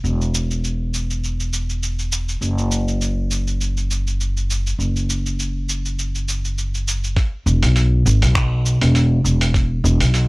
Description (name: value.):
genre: sunset chillout.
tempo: 101 BPM.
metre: 4/4.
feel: swing 55% on 16ths.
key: unclear.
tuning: A4 = 440 Hz.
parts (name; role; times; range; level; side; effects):
upright bass; bass; 0.0-10.3 s; E1 to B1; -18 LUFS; equal; none.
dusty soul sampler-style drum kit; drums; 0.0-10.3 s; finger snaps, hi-hat, shaker; -25 LUFS; right 1 dB; none.
electronic kick drum; drums; 7.2-9.7 s; none; -19 LUFS; equal; none.
room: little or no reverb.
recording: dry, gritty hardware recording.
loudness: -17 LUFS.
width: side -25 dB against mid.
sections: 0.0-7.2 A section; 7.2-10.3 B section.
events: none.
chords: none.